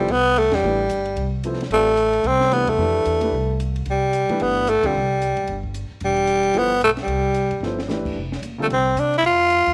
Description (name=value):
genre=modal jazz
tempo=223 BPM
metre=4/4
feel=swing 59% on 8ths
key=unclear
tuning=A4 = 440 Hz
part: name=growling tenor saxophone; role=melody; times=0.0-9.7 s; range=G3 to F4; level=-20 LUFS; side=equal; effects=none
part: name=warm concert grand piano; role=accompaniment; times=0.0-8.7 s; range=D3 to D5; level=-30 LUFS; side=equal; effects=none
part: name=upright bass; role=bass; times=0.0-9.7 s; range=E1 to C3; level=-29 LUFS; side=equal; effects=none
part: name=compact cocktail drum kit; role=drums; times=0.1-9.7 s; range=crash cymbal, hi-hat, kick drum, ride cymbal, snare drum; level=-38 LUFS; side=equal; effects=none
room=light reverb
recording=none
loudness=-20 LUFS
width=mono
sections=0.0-9.7 A section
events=band accent 0.5, 2.7, 4.8; drum fill 7.6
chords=0.0 Fmaj9; 3.9 Cmaj9; 8.2 F5